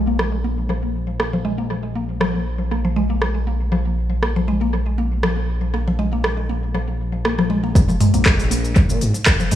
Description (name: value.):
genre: afro house.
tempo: 119 BPM.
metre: 4/4.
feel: swing 53% on 16ths.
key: unclear.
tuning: A4 = 440 Hz.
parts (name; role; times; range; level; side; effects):
mallet-like synth pluck; arpeggios; 0.0-9.6 s; F3 to Bb3; -22 LUFS; left 1 dB; chorus, phaser, sidechain pumping, tape echo.
smooth gliding synth bass; bass; 0.0-9.6 s; Ab1 to Bb2; -22 LUFS; equal; sidechain pumping.
afro-pop drum kit; drums; 0.2-9.6 s; cabasa, handclaps, hi-hat, rim click, toms; -22 LUFS; right 1 dB; small room ambience, tape echo.
electronic kick drum; drums; 7.8-9.4 s; none; -16 LUFS; equal; small room ambience.
room: light reverb.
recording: echo-heavy mix, small room ambience.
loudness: -17 LUFS.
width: side -12 dB against mid.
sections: 0.0-7.8 A section; 7.8-9.6 B section.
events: drop 7.8-9.6.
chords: 0.0 Bb5; 7.8 Bb7(no3).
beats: 0.19 0.69 1.20 | 1.70 2.21 2.71 3.22 | 3.72 4.22 4.73 5.23 | 5.74 6.24 6.75 7.25 | 7.75 8.26 8.76 9.27.